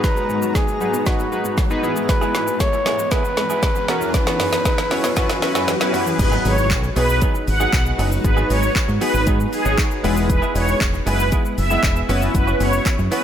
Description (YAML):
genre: dance-pop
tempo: 117 BPM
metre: 4/4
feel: straight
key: G# minor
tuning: A4 = 440 Hz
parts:
  - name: trumpet with bucket mute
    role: melody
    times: 0.0-5.9 s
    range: F#4 to C#5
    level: -23 LUFS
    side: equal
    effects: ping-pong delay
  - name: warm analog keys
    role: accompaniment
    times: 0.0-13.2 s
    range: G#3 to A#5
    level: -25 LUFS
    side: left 2 dB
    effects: chorus, sidechain pumping
  - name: granular cloud pad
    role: sustained chords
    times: 0.0-13.2 s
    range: E2 to A#5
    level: -27 LUFS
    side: equal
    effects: built-in reverb, sidechain pumping
  - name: wide unison pluck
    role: arpeggios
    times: 0.0-6.2 s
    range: F#2 to E4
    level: -31 LUFS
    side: left 1 dB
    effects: sidechain pumping, ping-pong delay
  - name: deep house drum kit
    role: drums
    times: 0.0-13.2 s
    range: crash cymbal, handclaps, hi-hat, kick drum, shaker, snare drum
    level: -21 LUFS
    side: equal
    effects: none
  - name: riser and impact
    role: sound effects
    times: 0.3-8.2 s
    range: none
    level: -31 LUFS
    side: equal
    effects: none
  - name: direct-recorded clean electric guitar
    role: riff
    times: 2.1-13.2 s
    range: E3 to G#4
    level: -28 LUFS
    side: right 5 dB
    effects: lush chorus
  - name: filtered supersaw swell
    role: melody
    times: 6.2-13.2 s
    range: G#4 to F#5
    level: -22 LUFS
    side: right 1 dB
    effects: sidechain pumping, ping-pong delay
  - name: deep dub fingered electric bass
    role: bass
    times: 6.2-13.1 s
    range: E1 to G#2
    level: -21 LUFS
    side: equal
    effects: sidechain pumping
room: light reverb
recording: none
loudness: -16 LUFS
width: side -9 dB against mid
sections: 0.0-6.2 A section; 6.2-13.2 B section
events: build-up 0.0-6.2; drum fill 0.0-6.2; riser 0.3-6.2; drop 6.2-13.2; impact 6.2-8.2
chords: 0.0 G#m7; 1.8 E; 3.9 F#7sus4; 6.2 G#m7; 10.0 E; 12.1 F#7sus4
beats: | 0.04 0.55 1.06 1.58 | 2.09 2.60 3.12 3.63 | 4.14 4.66 5.17 5.68 | 6.19 6.71 7.22 7.73 | 8.24 8.76 9.27 9.78 | 10.30 10.81 11.32 11.84 | 12.35 12.86